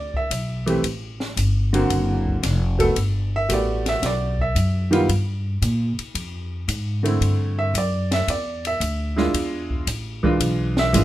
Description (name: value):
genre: jazz, small-group swing and bop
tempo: 113 BPM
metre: 4/4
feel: swing 69% on 8ths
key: unclear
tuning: A4 = 440 Hz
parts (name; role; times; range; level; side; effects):
- clear upright piano; accompaniment; 0.0-11.0 s; D3 to E5; -22 LUFS; right 1 dB; none
- upright bass; bass; 0.0-11.0 s; E#1 to Bb2; -23 LUFS; equal; none
- open jazz drum kit; drums; 0.1-11.0 s; hi-hat, kick drum, ride cymbal, snare drum; -29 LUFS; left 1 dB; none
room: moderate club reverb, RT60 0.8 s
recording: minimal, uncompressed stereo recording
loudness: -20 LUFS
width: side -14 dB against mid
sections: 0.0-11.0 A section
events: none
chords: 0.0 Em7; 0.8 Am7; 1.9 D7alt; 3.0 Gmaj9; 5.1 Gm7; 7.2 C69; 9.3 E7b9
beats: 0.30 | 0.83 1.37 1.90 2.43 | 2.96 3.49 4.02 4.55 | 5.09 5.62 6.15 6.68 | 7.21 7.75 8.28 8.81 | 9.34 9.87 10.40 10.94